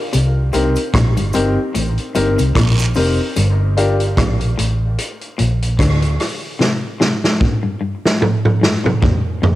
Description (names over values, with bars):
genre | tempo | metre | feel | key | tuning
dub reggae | 74 BPM | 4/4 | swing 57% on 16ths | G minor | A4 = 440 Hz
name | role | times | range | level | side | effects
dark baby grand piano | stabs | 0.0-4.0 s | C4 to Bb4 | -20 LUFS | left 2 dB | cassette tape, dub echo
electric guitar at the edge of break-up | riff | 0.1-9.6 s | F2 to D3 | -24 LUFS | left 3 dB | cassette tape
vintage muted fingered electric bass | bass | 0.1-6.2 s | F1 to D2 | -16 LUFS | equal | tube saturation
vintage drum kit | drums | 0.1-9.6 s | hi-hat, kick drum, rim click, snare drum, toms | -17 LUFS | equal | none
cabasa and guiro | percussion | 0.1-3.6 s | none | -29 LUFS | right 4 dB | dub echo
room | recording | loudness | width
light reverb, small room ambience | home recording on cassette | -14 LUFS | side -15 dB against mid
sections
0.0-9.6 A section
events
part muted 3.4-9.6; drum fill 6.6-9.6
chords
0.1 Cm7; 3.4 Gm; 6.6 N.C.